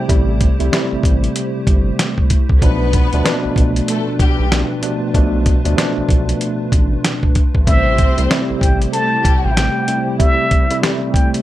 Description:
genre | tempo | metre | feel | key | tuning
hip hop, boom-bap hip-hop | 95 BPM | 4/4 | swing 61% on 16ths | A minor | A4 = 440 Hz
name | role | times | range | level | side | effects
trumpet with plunger mute | melody | 0.0-0.1, 7.7-11.3 s | E5 to A5 | -19 LUFS | equal | plate reverb
tine electric piano | accompaniment | 0.0-11.4 s | B2 to E4 | -20 LUFS | equal | overdrive, fast stereo tremolo, cassette tape, plate reverb
hollow soft pad | sustained chords | 0.0-11.4 s | A3 to C5 | -27 LUFS | right 2 dB | ensemble chorus, plate reverb
round analog bass | bass | 0.1-9.7 s | G1 to D2 | -18 LUFS | equal | none
dusty soul sampler-style drum kit | drums | 0.1-11.4 s | hi-hat, kick drum, snare drum | -15 LUFS | equal | none
warm studio string section | stabs | 2.6-9.5 s | G3 to C5 | -24 LUFS | left 3 dB | plate reverb, analog delay
room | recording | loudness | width
light reverb | none | -13 LUFS | side -14 dB against mid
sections
0.0-11.4 A section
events
none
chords
0.0 Am7; 2.6 Bm7b5; 7.7 Am7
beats
| 0.09 0.72 1.35 1.99 | 2.62 3.25 3.88 4.51 | 5.14 5.78 6.41 7.04 | 7.67 8.30 8.93 9.56 | 10.20 10.83

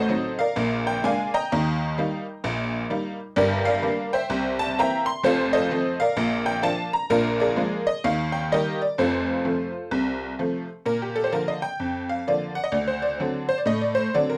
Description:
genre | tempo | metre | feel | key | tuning
jazz, stride piano | 128 BPM | 4/4 | swing 63% on 8ths | Eb major, Bb major from 3.4 s | A4 = 440 Hz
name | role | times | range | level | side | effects
tack piano | solo | 0.0-14.4 s | F1 to C6 | -24 LUFS | equal | none
room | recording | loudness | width
moderate booth ambience, RT60 0.2 s | dark, warm production | -24 LUFS | mono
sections
0.0-10.9 A section; 10.9-14.4 B section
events
none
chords
0.0 Adim7; 0.6 Bb7; 1.5 Eb; 3.4 Gm; 4.3 C7; 5.2 F7; 6.2 Bb; 7.1 Bb7; 8.0 Eb; 9.0 F; 10.9 Bb; 12.7 D7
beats
0.10 0.57 1.03 | 1.50 1.97 2.44 2.90 | 3.37 3.84 4.30 4.77 | 5.24 5.71 6.18 6.64 | 7.11 7.58 8.05 8.52 | 8.98 9.45 9.92 10.39 | 10.86 11.33 11.80 12.27 | 12.74 13.21 13.68 14.15

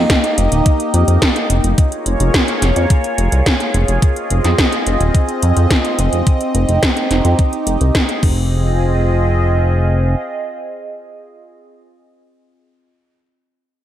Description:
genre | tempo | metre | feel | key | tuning
synthwave | 107 BPM | 4/4 | straight | F minor | A4 = 439 Hz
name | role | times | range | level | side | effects
phased analog pad | sustained chords | 0.0-11.5 s | Bb3 to Eb5 | -19 LUFS | equal | phaser, chorus, vintage 12-bit sampler grit
chorused synth bass | bass | 0.0-10.2 s | Eb1 to F2 | -14 LUFS | equal | none
80s electronic pad drums | drums | 0.1-8.3 s | crash cymbal, hi-hat, snare drum | -19 LUFS | equal | none
electronic kick drum | drums | 0.1-8.3 s | none | -14 LUFS | equal | none
room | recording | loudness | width
moderate lush hall reverb, RT60 2.1 s | big arena sound | -13 LUFS | side -11 dB against mid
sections
0.0-8.5 A section; 8.5-10.8 B section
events
none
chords
0.0 Eb; 1.8 Db6/F; 4.0 Fm7; 6.3 Cm/F; 8.2 Fm7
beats
0.10 0.66 1.22 | 1.78 2.34 2.90 3.46 | 4.02 4.58 5.14 5.71 | 6.27 6.83 7.39 7.95 | 8.51 9.07 9.63 10.19

